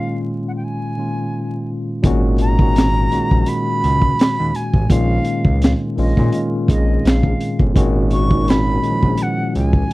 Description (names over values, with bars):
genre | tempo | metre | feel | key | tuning
R&B, neo-soul | 84 BPM | 4/4 | swing 56% on 16ths | G# dorian | A4 = 439 Hz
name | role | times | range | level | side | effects
breathy silver concert flute | melody | 0.0-9.9 s | D#5 to C#6 | -23 LUFS | right 1 dB | slapback echo
tine electric piano | accompaniment | 0.0-9.9 s | A#2 to G#4 | -19 LUFS | left 1 dB | medium stereo tremolo
smooth synth bass | bass | 2.0-9.9 s | G1 to A#2 | -18 LUFS | equal | none
crunchy breakbeat drum kit | drums | 2.0-9.9 s | handclaps, hi-hat, kick drum, snare drum | -16 LUFS | equal | none
room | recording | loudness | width
little or no reverb | dry, close 1970s-style studio recording, vinyl crackle | -15 LUFS | side -19 dB against mid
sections
0.0-2.0 A section; 2.0-9.9 B section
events
break 0.0-2.0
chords
0.0 A#m7; 2.0 G#m9; 4.9 A#m7; 7.8 G#m9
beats
0.61 1.32 | 2.04 2.75 3.47 4.18 | 4.89 5.61 6.32 7.04 | 7.75 8.47 9.18 9.89